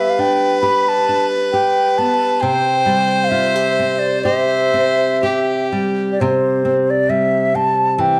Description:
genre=celtic folk, Celtic slow air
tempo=60-69 BPM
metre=4/4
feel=rubato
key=unclear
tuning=A4 = 440 Hz
part: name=wooden flute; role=melody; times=0.0-8.2 s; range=C5 to B5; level=-19 LUFS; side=equal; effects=none
part: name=rich fiddle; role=second line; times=0.0-6.1 s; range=G4 to C5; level=-21 LUFS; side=equal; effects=none
part: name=flamenco guitar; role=accompaniment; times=0.0-8.2 s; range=C3 to G4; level=-22 LUFS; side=equal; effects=none
room=moderate echo chamber reverb, RT60 1.3 s, studio reverb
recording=none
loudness=-16 LUFS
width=mono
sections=0.0-6.2 A section; 6.2-8.2 B section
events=none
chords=0.0 G; 2.4 C

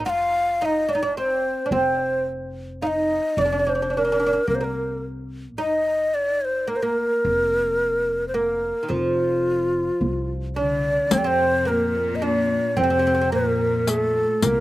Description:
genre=Turkish makam ensemble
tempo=109 BPM (eighths)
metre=10/8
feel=straight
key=F makam hicaz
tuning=A4 = 440 Hz
part: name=oud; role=second line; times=0.0-14.6 s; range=Eb3 to F4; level=-26 LUFS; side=right 3 dB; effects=slapback echo
part: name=upright bass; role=bass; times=0.0-14.6 s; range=F1 to F2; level=-29 LUFS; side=equal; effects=none
part: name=breathy reedy ney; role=melody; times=0.1-14.6 s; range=F4 to Gb5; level=-22 LUFS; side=left 1 dB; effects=none
part: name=warm chamber cello section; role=second line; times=10.6-14.6 s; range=Bb2 to D3-40c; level=-26 LUFS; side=left 2 dB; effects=none
part: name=riq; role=percussion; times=11.1-14.6 s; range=none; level=-23 LUFS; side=left 6 dB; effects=none
room=little or no reverb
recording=recorded outdoors, with no room sound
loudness=-20 LUFS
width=side -16 dB against mid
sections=0.0-11.1 A section; 11.1-14.6 B section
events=none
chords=none

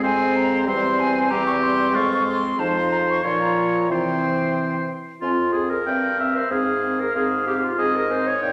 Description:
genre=quick classical-period movement for wind quintet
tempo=94 BPM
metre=2/4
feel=straight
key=F minor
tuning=A4 = 440 Hz
part: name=hollow concert flute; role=melody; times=0.0-8.5 s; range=E5 to Db6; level=-29 LUFS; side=equal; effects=none
part: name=clear oboe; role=second line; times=0.0-8.5 s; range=F4 to G5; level=-26 LUFS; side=equal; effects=none
part: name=mellow French horn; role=accompaniment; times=0.0-8.5 s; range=E3 to Eb4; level=-30 LUFS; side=equal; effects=none
part: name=warm clarinet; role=accompaniment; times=0.0-8.5 s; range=C4 to Db5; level=-26 LUFS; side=equal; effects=none
part: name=warm bassoon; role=bass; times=0.0-8.5 s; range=E2 to C3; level=-31 LUFS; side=equal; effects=none
room=wet recital hall reverb, RT60 1.4 s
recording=none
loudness=-21 LUFS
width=mono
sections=0.0-5.2 A section; 5.2-8.5 B section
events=none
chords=0.0 Fm; 0.7 C/E; 1.9 Fm; 2.6 F5; 3.2 Bbm; 3.9 C; 5.2 Fm; 5.9 C7/G; 6.5 Fm/Ab; 7.8 Ab

